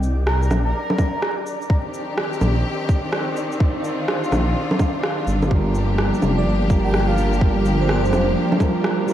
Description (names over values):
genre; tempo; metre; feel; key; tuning
future garage; 126 BPM; 4/4; swing 64% on 16ths; C minor; A4 = 441 Hz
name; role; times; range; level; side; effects
dark detuned saw bass; bass; 0.0-8.3 s; F1 to C2; -20 LUFS; equal; tube saturation, sidechain pumping
electronic shaker, rim click and bongos; drums; 0.0-9.1 s; none; -25 LUFS; right 1 dB; overdrive, vintage 12-bit sampler grit
flickering grainy texture; texture; 0.0-9.1 s; D4 to D5; -32 LUFS; equal; built-in reverb
airy dreamy lead; melody; 0.3-1.3, 6.4-8.3 s; C5 to Bb5; -29 LUFS; right 1 dB; chorus, tape echo
electronic kick drum; drums; 1.0-8.7 s; none; -19 LUFS; equal; overdrive, vintage 12-bit sampler grit
clear studio string section; sustained chords; 1.7-9.1 s; Eb3 to G4; -24 LUFS; left 1 dB; sidechain pumping
mellow electric guitar; accompaniment; 5.5-9.1 s; G3 to Bb4; -24 LUFS; right 2 dB; sidechain pumping, analog delay
room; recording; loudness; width
moderate huge ambient reverb, RT60 8.4 s; dreamy mix soaked in reverb, vinyl crackle; -18 LUFS; side -11 dB against mid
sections
0.0-9.1 A section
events
none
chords
0.0 Cmadd9; 5.5 Gm7